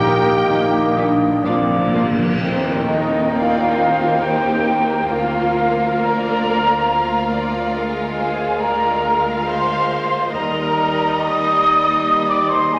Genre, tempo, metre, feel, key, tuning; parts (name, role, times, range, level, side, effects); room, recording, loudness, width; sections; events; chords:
classical, slow romantic movement for symphony orchestra; 68 BPM; 3/4; uneven beats, rubato; Eb major; A4 = 442 Hz
warm symphonic violin section; melody; 0.0-12.8 s; Bb4 to G5; -30 LUFS; equal
dark clarinet; second line; 0.0-12.8 s; G4 to Bb4; -29 LUFS; equal
large flute ensemble; second line; 0.0-12.8 s; Bb4 to Eb6; -21 LUFS; equal
warm cor anglais; second line; 0.0-12.8 s; D5 to G5; -30 LUFS; equal
warm symphonic violin section; second line; 0.0-12.8 s; G3 to G4; -30 LUFS; equal
mellow bassoon; accompaniment; 0.0-12.8 s; Eb3 to Bb3; -29 LUFS; equal
warm symphonic viola section; accompaniment; 0.0-12.8 s; Eb3 to Eb5; -29 LUFS; equal
clear trombone section; sustained chords; 0.0-2.1 s; barely audible
mellow French horn section; sustained chords; 0.0-12.8 s; G3 to F4; -28 LUFS; equal
rich symphonic cello section; bass; 0.0-12.8 s; D2 to Bb2; -29 LUFS; equal
rich symphonic double bass section; bass; 0.0-12.8 s; Bb1 to Eb2; -34 LUFS; equal
warm tuba; bass; 0.0-2.3 s; Bb1; -30 LUFS; equal
timpani; percussion; 0.0-2.3 s; Bb2; -28 LUFS; equal
tam-tam; percussion; 2.4-6.0 s; -32 LUFS; equal
wet scoring stage reverb, RT60 2.1 s; -18 LUFS; mono
0.0-2.4 A section; 2.4-12.8 B section
timpani fill 1.5-2.4; band accent 2.4-3.3
0.0 Eb/Bb; 1.5 Bb; 2.4 Eb; 5.1 Bb/D; 7.8 Bb7/D; 10.3 Eb